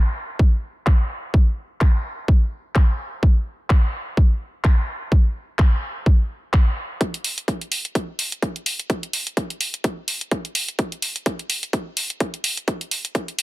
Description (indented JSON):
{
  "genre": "house",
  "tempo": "127 BPM",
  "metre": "4/4",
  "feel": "swing 56% on 16ths",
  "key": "none",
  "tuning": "none",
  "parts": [
    { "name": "electronic kick drum", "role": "drums", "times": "0.4-13.3 s", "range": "none", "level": "-17 LUFS", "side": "equal", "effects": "high-pass filter on kick, high-pass filter on room" },
    { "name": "house drum kit", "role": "drums", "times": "0.9-13.4 s", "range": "handclaps, hi-hat", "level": "-25 LUFS", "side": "equal", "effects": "low-pass filter on snare, low-pass filter on hats, low-pass filter on room" }
  ],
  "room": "little or no reverb",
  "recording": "dense, heavily limited modern master",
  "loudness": "-19 LUFS",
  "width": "side -18 dB against mid",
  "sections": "0.0-7.0 A section; 7.0-13.4 B section",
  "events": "build-up 7.0-13.4",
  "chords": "none"
}